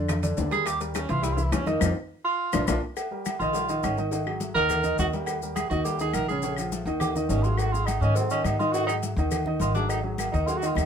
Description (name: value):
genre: Afro-Cuban jazz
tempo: 208 BPM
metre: 4/4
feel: straight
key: unclear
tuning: A4 = 442 Hz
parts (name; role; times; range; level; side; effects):
- warm grand piano; accompaniment; 0.0-10.9 s; Db3 to Fb5; -29 LUFS; equal; none
- upright bass; bass; 0.0-10.9 s; Ab1 to Ab2; -28 LUFS; equal; none
- bongos and cowbell; percussion; 0.1-10.9 s; none; -36 LUFS; left 9 dB; none
- claves; percussion; 0.1-10.9 s; none; -38 LUFS; left 9 dB; none
- congas; percussion; 0.1-10.9 s; none; -34 LUFS; left 3 dB; none
- maracas; percussion; 0.1-10.9 s; none; -40 LUFS; left 7 dB; none
- timbales and agogo bells; percussion; 0.1-10.9 s; none; -34 LUFS; right 3 dB; none
- warm tenor saxophone; second line; 0.5-10.9 s; Gb3 to Bb4; -28 LUFS; right 3 dB; none
room: light reverb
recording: minimal, uncompressed stereo recording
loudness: -24 LUFS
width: side -7 dB against mid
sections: 0.0-3.0 A section; 3.0-10.9 A section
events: tenor saxophone solo 0.0-10.9; band accent 1.8-3.0; drum fill 2.4-3.0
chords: 0.0 Bb7; 0.7 Eb; 1.2 C7; 1.8 F5; 2.4 Bb; 3.0 Ebadd9; 4.1 Absus2; 5.3 Eb7; 6.4 Bbm7; 7.0 Ab5